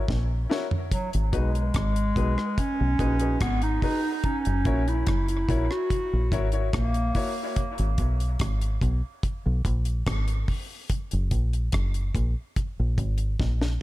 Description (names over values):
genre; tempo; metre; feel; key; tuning
dub reggae; 72 BPM; 4/4; straight; G# minor; A4 = 440 Hz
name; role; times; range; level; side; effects
warm upright piano; stabs; 0.0-7.3 s; D#4 to C#5; -34 LUFS; left 5 dB; dub echo
deep dub fingered electric bass; bass; 0.0-13.8 s; F#1 to B1; -25 LUFS; equal; none
deep reggae drum kit; drums; 0.1-13.8 s; hi-hat, kick drum, rim click, snare drum, toms; -28 LUFS; equal; none
mellow clarinet; melody; 0.9-7.5 s; F#3 to F#4; -28 LUFS; right 1 dB; dub echo
room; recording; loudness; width
small room ambience; echo-heavy mix; -23 LUFS; side -16 dB against mid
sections
0.0-13.8 A section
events
drum fill 0.1-0.9, 13.4-13.8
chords
0.0 F#7; 0.9 G#m7; 4.2 F#7; 7.6 G#m; 10.9 F#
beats
0.08 | 0.92 1.75 2.58 3.41 | 4.24 5.07 5.90 6.74 | 7.57 8.40 9.23 10.06 | 10.90 11.73 12.56 13.39